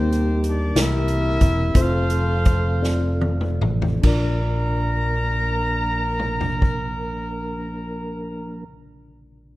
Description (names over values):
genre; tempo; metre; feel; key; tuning
slow gospel; 46-64 BPM (dotted quarters); 6/8; straight; Bb major; A4 = 438 Hz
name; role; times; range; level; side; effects
warm horn section; melody; 0.0-8.6 s; C4 to Bb5; -26 LUFS; equal; slapback echo
mellow tine electric piano; accompaniment; 0.0-9.6 s; Bb1 to D5; -29 LUFS; left 2 dB; medium stereo tremolo
mellow tonewheel organ; sustained chords; 0.0-8.6 s; Eb3 to Bb4; -31 LUFS; right 1 dB; fast rotary speaker, chorus vibrato
fingered electric bass; bass; 0.0-8.6 s; E1 to Eb2; -23 LUFS; equal; none
swinging big-band drum kit; drums; 0.1-6.8 s; crash cymbal, hi-hat, kick drum, snare drum, toms; -21 LUFS; equal; none
room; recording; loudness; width
small room reverb; rough home demo mix, lossy compression artefacts; -19 LUFS; side -18 dB against mid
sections
0.0-4.0 A section; 4.0-9.2 B section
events
slowing down 0.0-4.0; drum fill 2.8-4.0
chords
0.0 Eb; 0.8 C7; 1.8 F; 4.0 Bb